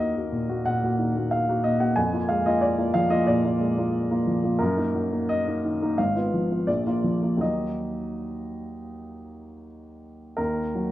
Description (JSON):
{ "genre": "classical, romantic character piece for solo piano", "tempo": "78-92 BPM", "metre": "4/4", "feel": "rubato", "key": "Eb minor", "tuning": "A4 = 440 Hz", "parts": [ { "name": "warm upright piano", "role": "solo", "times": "0.0-10.9 s", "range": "Ab1 to Ab5", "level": "-23 LUFS", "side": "equal", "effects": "none" } ], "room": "moderate recital hall reverb, RT60 1.5 s", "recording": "worn, warbling old tape, cassette tape, warbly pitch drift", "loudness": "-22 LUFS", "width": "side -14 dB against mid", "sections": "0.0-10.4 A section", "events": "none", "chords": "0.0 Ebm; 2.0 Bb7/F; 4.6 Ebm/Gb; 6.0 Fdim/Ab; 6.7 Bb; 7.4 Ebm", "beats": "0.66 1.32 | 1.98 2.63 3.28 3.94 | 4.60 5.30 5.98 6.67 | 7.41 8.16 8.90 9.64 | 10.38" }